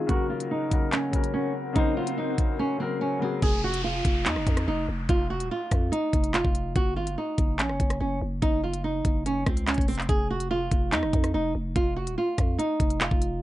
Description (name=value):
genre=hip hop, drill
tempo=144 BPM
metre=4/4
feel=half-time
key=unclear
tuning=A4 = 440 Hz
part: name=flamenco guitar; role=melody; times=0.0-13.4 s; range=C4 to Ab4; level=-28 LUFS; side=right 2 dB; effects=low-pass filter, analog delay, plate reverb
part: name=felt-muted upright piano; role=accompaniment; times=0.0-3.4 s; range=Db3 to C5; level=-30 LUFS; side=left 5 dB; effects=low-pass filter, plate reverb
part: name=deep dark ambient pad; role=sustained chords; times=0.0-3.4 s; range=Db4 to Gb5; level=-38 LUFS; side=left 4 dB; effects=chorus, built-in reverb, low-pass filter, plate reverb
part: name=downlifter and swell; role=sound effects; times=1.3-6.8 s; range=none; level=-37 LUFS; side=left 1 dB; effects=none
part: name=drill drum kit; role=drums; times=0.1-13.3 s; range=handclaps, hi-hat, kick drum, rim click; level=-25 LUFS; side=equal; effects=none
part: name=growling 808-style bass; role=bass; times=3.4-13.4 s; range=Eb1 to F2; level=-30 LUFS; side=equal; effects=none
room=light reverb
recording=nothing above 10.8 kHz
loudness=-24 LUFS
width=side -15 dB against mid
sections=0.0-3.4 A section; 3.4-13.4 B section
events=filter sweep 0.0-3.4; break 2.6-3.4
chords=0.1 Gb; 3.4 Ebsus2; 6.8 Gb5; 10.1 Ebsus2